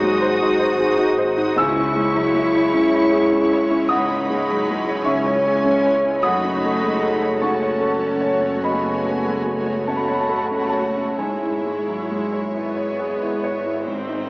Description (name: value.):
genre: classical.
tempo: 44-52 BPM (dotted quarters).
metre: 12/8.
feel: rubato.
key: C# minor.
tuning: A4 = 441 Hz.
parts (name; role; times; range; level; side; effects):
clear grand piano; melody; 0.0-14.3 s; C#2 to F#6; -20 LUFS; equal; none.
rich chamber violin section; melody; 0.0-14.3 s; B#4 to C#5; -33 LUFS; equal; none.
warm chamber violin section; second line; 0.0-14.3 s; E5 to D#6; -31 LUFS; equal; none.
rich symphonic viola section; accompaniment; 0.0-14.3 s; G#3 to F#4; -28 LUFS; equal; none.
mellow French horn section; sustained chords; 0.0-14.3 s; G#3 to F#4; -24 LUFS; left 1 dB; none.
rich studio cello section; bass; 0.0-14.3 s; G#3 to F#4; -28 LUFS; equal; none.
rich studio double bass section; bass; 0.0-14.3 s; F#1 to C#2; -33 LUFS; right 1 dB; none.
timpani; percussion; 1.6-2.7, 13.9-14.3 s; G#2 to C#3; -38 LUFS; equal; none.
room: wet concert hall reverb, RT60 2.5 s.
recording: worn, warbling old tape, cassette tape, warbly pitch drift, small speaker sound.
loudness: -17 LUFS.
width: side -26 dB against mid.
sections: 0.0-14.3 A section.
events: timpani fill 13.9-14.3.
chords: 0.0 G#7; 1.6 C#m; 6.2 F#m; 11.2 C#m/G#.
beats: 0.41 | 1.57 2.74 3.89 5.05 | 6.24 7.42 8.63 9.88 | 11.18 12.54 13.86.